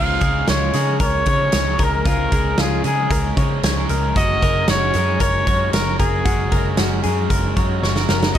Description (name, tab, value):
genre	jangly indie pop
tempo	114 BPM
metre	4/4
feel	straight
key	unclear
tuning	A4 = 440 Hz
part	warm trumpet	melody	0.0-8.4 s	Ab4 to F5	-22 LUFS	equal	none
part	raw garage guitar	accompaniment	0.0-8.4 s	Cb3 to Bb4	-25 LUFS	right 4 dB	overdrive
part	direct-recorded clean electric guitar	arpeggios	0.0-8.4 s	F4 to Db5	-25 LUFS	left 8 dB	phaser
part	vintage muted picked electric bass	bass	0.0-8.4 s	Gb1 to Db3	-22 LUFS	equal	none
part	big rock drum kit	drums	0.2-8.4 s	hi-hat, kick drum, snare drum	-20 LUFS	equal	none
room	light reverb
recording	dark, warm production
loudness	-16 LUFS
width	side -10 dB against mid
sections	0.0-8.4 A section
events	drum fill 7.8-8.4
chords	0.0 Db6; 4.2 Gbadd9